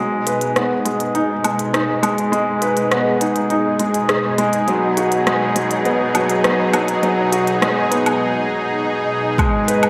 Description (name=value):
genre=piano and strings electronica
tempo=102 BPM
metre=4/4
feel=straight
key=G# minor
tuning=A4 = 440 Hz
part: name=lush unison pad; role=sustained chords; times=0.0-9.9 s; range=B2 to G#4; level=-23 LUFS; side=equal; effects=chorus, sidechain pumping
part: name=felt-muted upright piano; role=riff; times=0.0-9.9 s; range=F#3 to B4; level=-21 LUFS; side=equal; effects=delay
part: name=warm chamber cello section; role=bass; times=0.0-9.9 s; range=G#2 to B2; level=-31 LUFS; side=equal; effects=none
part: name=organic electronic drum kit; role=drums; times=0.3-9.9 s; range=hi-hat, rim click, woodblock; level=-25 LUFS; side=equal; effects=none
part: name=electronic kick drum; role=drums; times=9.4-9.5 s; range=none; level=-20 LUFS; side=equal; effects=none
room=wet lush hall reverb, RT60 1.5 s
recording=none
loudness=-18 LUFS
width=mono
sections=0.0-9.4 A section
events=build-up 0.0-9.4; filter sweep on analog synth pad 0.0-9.4; break 8.2-9.4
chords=0.0 G#m; 4.7 B6; 9.4 G#m